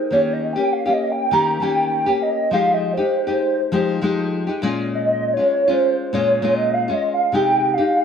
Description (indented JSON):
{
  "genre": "indie pop",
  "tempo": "100 BPM",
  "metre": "4/4",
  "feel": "straight",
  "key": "unclear",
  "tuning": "A4 = 444 Hz",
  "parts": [
    { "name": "hollow clarinet-like synth lead", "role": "melody", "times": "0.0-8.0 s", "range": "C5 to Bb5", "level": "-18 LUFS", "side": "right 2 dB", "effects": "ensemble chorus, tape echo" },
    { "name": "nylon-string guitar", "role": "accompaniment", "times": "0.0-8.0 s", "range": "Bb2 to G4", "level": "-21 LUFS", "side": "left 3 dB", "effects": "lush chorus, warbly pitch drift" }
  ],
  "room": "light reverb, small room reverb",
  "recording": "none",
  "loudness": "-17 LUFS",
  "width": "side -7 dB against mid",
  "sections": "0.0-8.0 A section",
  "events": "soft synth lead solo 0.0-8.0",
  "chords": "0.1 Eb7; 2.5 Fm9; 4.6 Bbm7; 7.3 Abmaj7/C"
}